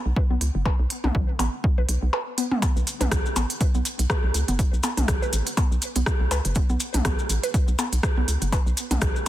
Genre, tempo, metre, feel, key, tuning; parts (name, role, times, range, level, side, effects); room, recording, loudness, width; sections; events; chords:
minimal techno; 122 BPM; 4/4; swing 56% on 16ths; A4 = 439 Hz
hollow knocking FM bass; bass; 0.1-9.1 s; F#1 to C#2; -24 LUFS; equal; sidechain pumping
electronic kick drum; drums; 0.2-9.1 s; -23 LUFS; equal; overdrive
mallet-like synth pluck; riff; 0.3-9.0 s; B3 to B4; -31 LUFS; right 1 dB; chorus, sidechain pumping, digital delay
garage drum kit; drums; 0.4-9.1 s; hi-hat, rim click; -29 LUFS; right 1 dB; soft clipping on snare
electronic percussion blips and toms; percussion; 0.7-9.0 s; -30 LUFS; left 2 dB; ping-pong delay
maracas; percussion; 2.6-9.2 s; -35 LUFS; left 4 dB
little or no reverb; dense, heavily limited modern master; -21 LUFS; side -14 dB against mid
0.0-9.3 A section
filter sweep on synth arpeggio sound 0.0-9.3; break 2.1-2.6